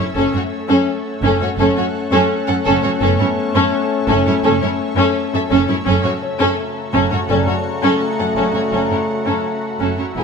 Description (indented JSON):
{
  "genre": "cinematic, suspense film score",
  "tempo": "84 BPM",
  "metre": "4/4",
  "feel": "straight",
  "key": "F# minor",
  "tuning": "A4 = 436 Hz",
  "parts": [
    { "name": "warm symphonic violin section", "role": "melody", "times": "0.0-10.2 s", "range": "G#4 to F#5", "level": "-23 LUFS", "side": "left 3 dB", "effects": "none" },
    { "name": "warm symphonic violin section", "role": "second line", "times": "0.0-10.2 s", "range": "B3 to A4", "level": "-23 LUFS", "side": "equal", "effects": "none" },
    { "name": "warm symphonic viola section", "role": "accompaniment", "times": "0.0-10.2 s", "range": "C#4 to E4", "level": "-21 LUFS", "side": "equal", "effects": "none" },
    { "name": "shimmering ambient pad", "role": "sustained chords", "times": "0.0-10.2 s", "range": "E4 to C#6", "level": "-30 LUFS", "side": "equal", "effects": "chorus, built-in reverb" },
    { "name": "rich symphonic cello section", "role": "bass", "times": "0.0-10.2 s", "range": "E2 to F#2", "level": "-23 LUFS", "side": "right 4 dB", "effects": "none" },
    { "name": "felt-muted upright piano", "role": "texture", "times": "0.0-10.2 s", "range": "B3 to D5", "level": "-32 LUFS", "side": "left 2 dB", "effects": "none" },
    { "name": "clear French horn section", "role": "sustained chords", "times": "0.1-10.2 s", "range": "C#3 to C#4", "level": "-22 LUFS", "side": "left 4 dB", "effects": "none" },
    { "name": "rich symphonic double bass section", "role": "bass", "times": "0.2-10.2 s", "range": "E1 to F#1", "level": "-23 LUFS", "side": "right 5 dB", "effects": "none" },
    { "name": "warm symphonic violin section", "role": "texture", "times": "5.9-10.2 s", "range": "A5 to A#5", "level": "-29 LUFS", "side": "left 3 dB", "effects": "none" }
  ],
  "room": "moderate scoring stage reverb, RT60 1.6 s",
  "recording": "none",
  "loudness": "-15 LUFS",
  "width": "side -5 dB against mid",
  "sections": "0.0-10.2 A section",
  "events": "none",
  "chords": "0.2 F#m; 3.0 A/F#; 5.9 F#m; 8.7 A/F#"
}